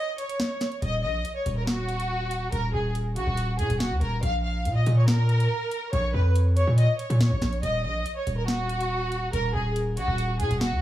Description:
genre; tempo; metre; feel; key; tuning
hip hop, drill; 141 BPM; 4/4; half-time; Eb minor; A4 = 440 Hz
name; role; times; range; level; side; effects
warm symphonic violin section; melody; 0.0-10.8 s; Gb4 to F5; -28 LUFS; equal; none
drill drum kit; drums; 0.2-10.7 s; hi-hat, snare drum; -31 LUFS; equal; none
hard-hitting 808-style bass; bass; 0.8-10.8 s; Eb1 to Bb2; -24 LUFS; equal; none
room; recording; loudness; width
little or no reverb; small room ambience; -23 LUFS; side -13 dB against mid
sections
0.0-10.8 A section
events
break 0.0-0.8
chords
0.0 N.C.; 0.8 Ebm; 4.2 Bbm; 7.6 Ebm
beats
0.40 | 0.82 1.25 1.68 2.10 | 2.53 2.95 3.38 3.80 | 4.23 4.65 5.08 5.50 | 5.93 6.36 6.78 7.21 | 7.63 8.06 8.48 8.91 | 9.33 9.76 10.19 10.61

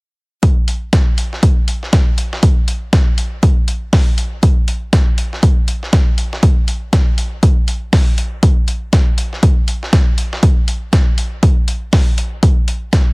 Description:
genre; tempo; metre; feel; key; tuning
deep house; 120 BPM; 4/4; swing 60% on 16ths; none; none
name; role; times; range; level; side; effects
dusty soul sampler-style drum kit; drums; 0.4-13.1 s; hi-hat, snare drum; -23 LUFS; equal; sidechain pumping on hats, high-pass filter on hats, high-pass filter on snare
electronic kick drum; drums; 0.4-13.0 s; none; -12 LUFS; equal; none
room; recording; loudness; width
little or no reverb; heavily compressed radio sound; -12 LUFS; side -28 dB against mid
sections
0.4-13.1 A section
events
none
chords
none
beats
| 0.43 0.93 1.43 1.93 | 2.43 2.93 3.43 3.93 | 4.43 4.93 5.43 5.93 | 6.43 6.93 7.43 7.93 | 8.43 8.93 9.43 9.93 | 10.43 10.93 11.43 11.93 | 12.43 12.93

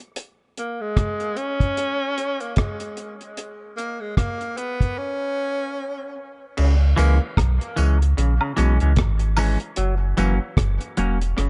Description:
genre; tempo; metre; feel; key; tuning
dub reggae; 75 BPM; 4/4; swing 60% on 16ths; C# dorian; A4 = 444 Hz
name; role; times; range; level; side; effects
deep reggae drum kit; drums; 0.0-11.5 s; crash cymbal, hi-hat, kick drum, rim click; -26 LUFS; equal; none
edgy tenor saxophone; melody; 0.6-7.2 s; G#3 to C#4; -30 LUFS; equal; low-pass filter, dub echo
overdriven clav; arpeggios; 6.6-11.5 s; B2 to F#3; -33 LUFS; equal; dub echo
warm sub bass; bass; 6.6-11.5 s; E1 to C#2; -21 LUFS; equal; none
clean electric guitar; accompaniment; 7.0-11.2 s; E3 to C#4; -29 LUFS; equal; low-pass filter
tambourine and woodblock; percussion; 7.0-10.4 s; none; -32 LUFS; equal; dub echo
room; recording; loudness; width
light reverb, small room reverb; dark, warm production, nothing above 11.0 kHz; -22 LUFS; mono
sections
0.0-6.6 A section; 6.6-11.5 B section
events
break 0.0-6.6, 9.8-11.5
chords
0.0 N.C.; 6.6 C#m; 9.8 F#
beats
| 0.17 0.97 1.77 2.57 | 3.37 4.17 4.97 5.77 | 6.57 7.37 8.17 8.97 | 9.77 10.57 11.37

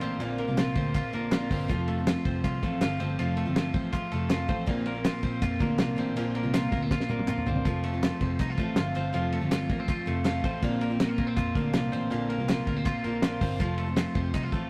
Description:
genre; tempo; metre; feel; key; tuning
jangly indie pop; 161 BPM; 4/4; straight; F major; A4 = 440 Hz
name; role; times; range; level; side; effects
picked steel-string acoustic guitar; accompaniment; 0.0-14.7 s; Bb2 to F4; -37 LUFS; equal; none
twelve-string electric guitar; arpeggios; 0.0-14.7 s; Bb2 to F4; -33 LUFS; equal; none
vintage muted picked electric bass; bass; 0.0-14.7 s; F1 to F2; -35 LUFS; equal; none
cloth-damped thuddy drum kit; drums; 0.0-14.6 s; hi-hat, kick drum, ride cymbal, snare drum, toms; -32 LUFS; equal; none
group handclap; percussion; 0.6-14.4 s; none; -47 LUFS; equal; none
room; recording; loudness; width
moderate stone room reverb, RT60 1.2 s; rough rehearsal-room recording; -28 LUFS; mono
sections
0.0-14.7 A section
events
drum fill 6.9-7.7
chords
0.0 Bbadd9; 1.7 F; 4.7 Bbadd9; 7.7 F; 10.6 Bbadd9; 13.6 F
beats
| 0.20 0.58 0.95 1.32 | 1.70 2.07 2.44 2.81 | 3.19 3.56 3.93 4.31 | 4.68 5.05 5.42 5.79 | 6.17 6.54 6.91 7.28 | 7.65 8.03 8.40 8.77 | 9.14 9.51 9.88 10.26 | 10.63 11.00 11.37 11.74 | 12.11 12.48 12.86 13.23 | 13.60 13.97 14.34

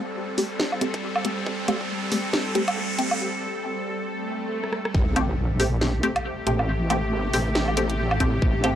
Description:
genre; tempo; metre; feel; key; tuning
deep dubstep; 138 BPM; 4/4; swing 58% on 16ths, half-time; A phrygian; A4 = 440 Hz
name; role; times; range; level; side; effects
bowed-like drone; sustained chords; 0.0-8.8 s; C3 to A4; -29 LUFS; equal; built-in reverb
riser, swell and impact; sound effects; 0.0-6.7 s; none; -32 LUFS; equal; none
filtered dub chord stab; stabs; 0.4-8.7 s; A3 to G4; -27 LUFS; left 1 dB; phaser, dub echo
garage drum kit; drums; 0.4-8.7 s; hi-hat, rim click, snare drum, woodblock; -27 LUFS; right 1 dB; small room reverb
electronic kick drum; drums; 0.9-1.9, 4.9-5.0, 8.2-8.5 s; none; -22 LUFS; equal; high-pass filter on kick, small room reverb
wobble bass; bass; 4.9-8.8 s; A1 to Bb1; -25 LUFS; equal; chorus
room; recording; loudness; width
digital ambience; dry, gritty hardware recording, cassette tape; -22 LUFS; side -10 dB against mid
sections
0.0-4.9 A section; 4.9-8.8 B section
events
build-up 0.0-4.9; riser 0.0-3.2; filter sweep on synth stab 0.0-4.9; break 3.2-4.9; swell 4.2-4.9; drum fill 4.6-4.9; drop 4.9-8.8; impact 4.9-6.7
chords
0.0 Am7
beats
0.16 0.59 1.03 | 1.47 1.90 2.33 2.77 | 3.20 3.64 4.07 4.51 | 4.94 5.38 5.81 6.25 | 6.68 7.12 7.55 7.99 | 8.42

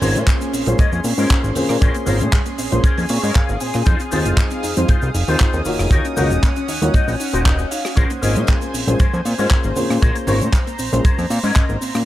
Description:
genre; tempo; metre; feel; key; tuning
nu-disco, nu disco; 117 BPM; 4/4; straight; Bb minor; A4 = 440 Hz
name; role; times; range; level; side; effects
dark grand piano; accompaniment; 0.0-11.0 s; Bb3 to Db5; -24 LUFS; left 1 dB; slapback echo
lush unison pad; sustained chords; 0.0-12.1 s; Db4 to Eb6; -27 LUFS; right 1 dB; chorus, sidechain pumping
soft round pluck; arpeggios; 0.0-12.0 s; Ab3 to Gb4; -28 LUFS; left 3 dB; chorus, sidechain pumping, tape echo
electric guitar with an envelope filter; riff; 0.0-11.8 s; Db4 to Ab5; -26 LUFS; left 4 dB; ensemble chorus, slapback echo
fat analog bass; bass; 0.0-12.0 s; Eb1 to Bb2; -20 LUFS; equal; none
tight funk drum kit; drums; 0.0-12.0 s; cabasa, handclaps, hi-hat, rim click; -25 LUFS; right 1 dB; none
congas and egg shaker; percussion; 0.0-12.1 s; none; -29 LUFS; right 3 dB; none
kick drum; drums; 0.3-11.7 s; none; -16 LUFS; equal; none
room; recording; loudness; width
small room ambience; none; -15 LUFS; side -14 dB against mid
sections
0.0-12.1 A section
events
clean electric guitar fill 2.8-3.9, 7.2-8.0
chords
0.0 Bbm9; 3.9 Fm7; 5.9 Ebm7; 8.0 Bbm9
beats
0.28 0.79 1.30 | 1.82 2.33 2.84 3.35 | 3.87 4.38 4.89 5.41 | 5.92 6.43 6.94 7.46 | 7.97 8.48 9.00 9.51 | 10.02 10.53 11.05 11.56

